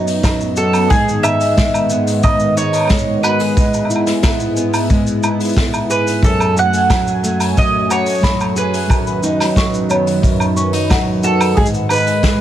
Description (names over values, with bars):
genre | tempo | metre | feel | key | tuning
folktronica | 90 BPM | 4/4 | straight | unclear | A4 = 441 Hz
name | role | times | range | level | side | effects
warm analog pad | sustained chords | 0.0-12.4 s | F#2 to G#5 | -20 LUFS | equal | chorus
fingerpicked steel-string acoustic guitar | arpeggios | 0.0-12.4 s | F#2 to G#4 | -18 LUFS | right 1 dB | ping-pong delay
vintage brush drum kit | drums | 0.1-12.4 s | hi-hat, shaker, snare drum, woodblock | -21 LUFS | equal | none
kick drum | drums | 0.2-12.4 s | none | -17 LUFS | equal | none
mandolin | melody | 0.6-12.4 s | G#4 to F#5 | -18 LUFS | right 2 dB | ping-pong delay
marimba with medium mallets | second line | 7.9-11.2 s | C#5 to C#6 | -24 LUFS | left 2 dB | digital delay
room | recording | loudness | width
studio ambience | vinyl crackle | -12 LUFS | side -11 dB against mid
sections
0.0-12.4 A section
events
none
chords
0.0 B/F#; 0.9 G#m; 3.6 E/G#; 6.2 F#madd9; 8.9 B/F#; 11.6 G#m